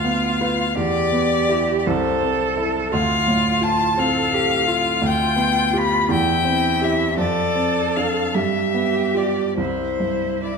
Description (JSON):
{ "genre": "classical, slow romantic movement for piano trio", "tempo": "46-58 BPM (dotted quarters)", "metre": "6/8", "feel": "rubato", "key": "C major", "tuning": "A4 = 440 Hz", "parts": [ { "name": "warm violin", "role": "melody", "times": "0.0-10.6 s", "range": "C5 to B5", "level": "-21 LUFS", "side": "left 7 dB", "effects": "none" }, { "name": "clear cello", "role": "second line", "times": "0.0-10.6 s", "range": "E4 to A4", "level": "-24 LUFS", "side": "right 7 dB", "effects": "none" }, { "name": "warm baby grand piano", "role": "accompaniment", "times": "0.0-10.6 s", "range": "C2 to B4", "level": "-22 LUFS", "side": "right 2 dB", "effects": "none" } ], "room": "wet recital hall reverb, RT60 1.4 s", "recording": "minimal, uncompressed stereo recording", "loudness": "-17 LUFS", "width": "side -5 dB against mid", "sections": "0.0-10.6 A section", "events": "none", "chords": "0.0 Bdim/D; 0.8 Em; 1.9 Am/C; 2.9 Dm7; 5.0 G7/D; 6.1 C/E; 7.2 Dm7/F; 8.4 G7; 9.6 C", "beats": "| 0.76 1.85 | 2.93 3.97 | 5.04 6.12 | 7.18 8.36 | 9.59" }